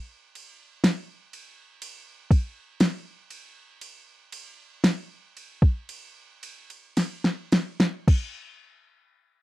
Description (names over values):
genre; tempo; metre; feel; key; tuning
pop; 53-62 BPM; 4/4; straight; none; none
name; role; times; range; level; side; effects
smooth R&B drum kit; drums; 0.4-8.3 s; crash cymbal, kick drum, ride cymbal, snare drum; -22 LUFS; equal; overdrive
room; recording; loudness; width
little or no reverb; dry, close 1970s-style studio recording; -22 LUFS; side -18 dB against mid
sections
0.0-8.1 A section; 8.1-9.4 B section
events
slowing down 0.0-8.1; drum fill 7.0-8.1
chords
none